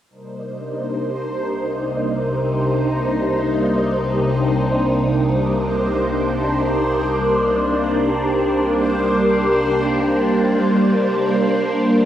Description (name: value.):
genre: ambient.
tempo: free time.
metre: none.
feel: none.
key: C minor.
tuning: A4 = 440 Hz.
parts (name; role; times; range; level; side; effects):
phased string machine; sustained chords; 0.1-12.1 s; C3 to Eb4; -17 LUFS; equal; ensemble chorus, phaser.
round analog bass; bass; 0.1-12.1 s; G1 to C2; -34 LUFS; equal; none.
bubbling stepped-filter texture; texture; 0.1-12.1 s; C5; -26 LUFS; right 1 dB; chorus, built-in reverb.
room: wet spring reverb, RT60 2.8 s.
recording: home recording on cassette.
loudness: -16 LUFS.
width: side -11 dB against mid.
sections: 0.1-12.1 A section.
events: fade-in on analog synth bass 0.1-12.1; filter sweep on string machine 0.1-12.1.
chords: 0.1 Cm7; 11.3 Gm.